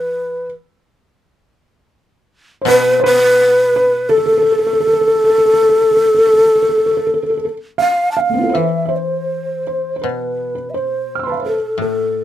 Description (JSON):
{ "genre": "japanese traditional, Japanese chamber music", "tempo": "75-87 BPM", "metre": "4/4", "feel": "rubato", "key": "A hirajoshi", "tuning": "A4 = 441 Hz", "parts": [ { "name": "breathy mellow long shakuhachi", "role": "melody", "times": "0.0-12.2 s", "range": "A4 to A5", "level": "-14 LUFS", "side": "equal", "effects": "none" }, { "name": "felt-muted upright piano", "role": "second line", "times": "0.0-12.2 s", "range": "A3 to F6", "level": "-19 LUFS", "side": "right 1 dB", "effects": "none" }, { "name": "koto", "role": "accompaniment", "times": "0.0-12.2 s", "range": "A2 to E3", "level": "-24 LUFS", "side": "left 3 dB", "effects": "none" } ], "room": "little or no reverb", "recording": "close, detailed microphones", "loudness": "-12 LUFS", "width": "side -12 dB against mid", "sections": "0.0-8.6 A section; 8.6-12.2 B section", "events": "none", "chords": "none" }